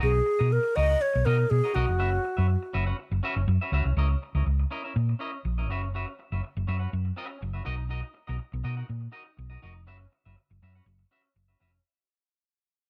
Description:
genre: disco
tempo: 122 BPM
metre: 4/4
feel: straight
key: unclear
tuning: A4 = 439 Hz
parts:
  - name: alto flute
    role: melody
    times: 0.0-2.7 s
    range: F#4 to D#5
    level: -28 LUFS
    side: equal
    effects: none
  - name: clean electric guitar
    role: accompaniment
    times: 0.0-11.8 s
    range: C#4 to F#5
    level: -38 LUFS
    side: equal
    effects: none
  - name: hollow-body short-scale fingered electric bass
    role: bass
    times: 0.0-11.8 s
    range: E#1 to B2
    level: -28 LUFS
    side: equal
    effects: none
room: small room ambience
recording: none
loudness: -28 LUFS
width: mono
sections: 0.0-4.0 A section; 4.0-11.8 B section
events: fade-out 4.0-11.8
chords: 0.0 Bmaj7; 2.0 F#7sus4; 4.0 C#m69; 5.7 F#7sus4; 7.7 Bmaj7; 9.9 F#7sus4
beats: | 0.02 0.52 1.01 1.50 | 2.00 2.49 2.98 3.48 | 3.97 4.46 4.95 5.45 | 5.94 6.43 6.92 7.42 | 7.91 8.40 8.89 9.38 | 9.88 10.37 10.86 11.35

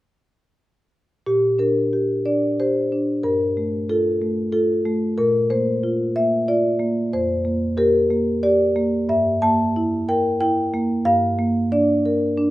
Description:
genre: classical, contemporary piece for solo marimba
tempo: 92 BPM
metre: 3/4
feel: rubato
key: Bb major, G minor from 9.1 s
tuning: A4 = 439 Hz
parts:
  - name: marimba with medium mallets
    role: solo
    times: 1.3-12.5 s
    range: F2 to A5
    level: -18 LUFS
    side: equal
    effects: none
room: light reverb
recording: close, detailed microphones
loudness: -18 LUFS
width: side -16 dB against mid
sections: 1.3-12.5 A section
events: none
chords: 1.3 Bb6; 3.2 Gm9; 5.2 Bbadd9; 7.1 Fsus24; 9.1 Gm6; 11.1 Bb/G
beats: | 1.26 1.93 2.60 | 3.25 3.90 4.54 | 5.18 5.83 6.48 | 7.13 7.77 8.42 | 9.08 9.75 10.40 | 11.06 11.71 12.37

